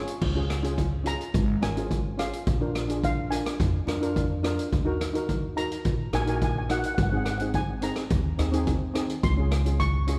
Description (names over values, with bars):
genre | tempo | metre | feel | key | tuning
calypso | 106 BPM | 4/4 | straight | Db major | A4 = 440 Hz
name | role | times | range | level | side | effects
steel pan | accompaniment | 0.0-10.2 s | C4 to Bb4 | -33 LUFS | equal | none
upright bass | bass | 0.0-10.1 s | Ab1 to F2 | -31 LUFS | equal | none
street-band drum kit | drums | 0.1-10.2 s | crash cymbal, hi-hat, kick drum, rim click | -31 LUFS | equal | none
steel pan | melody | 1.1-10.2 s | F5 to Db6 | -36 LUFS | equal | none
room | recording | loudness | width
moderate scoring stage reverb, RT60 2.0 s | recorded in a church or concert hall | -27 LUFS | mono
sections
0.2-10.2 A section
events
none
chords
0.2 Db; 2.5 Bb; 4.7 Ebm; 7.0 Abadd9; 9.2 Dbmaj7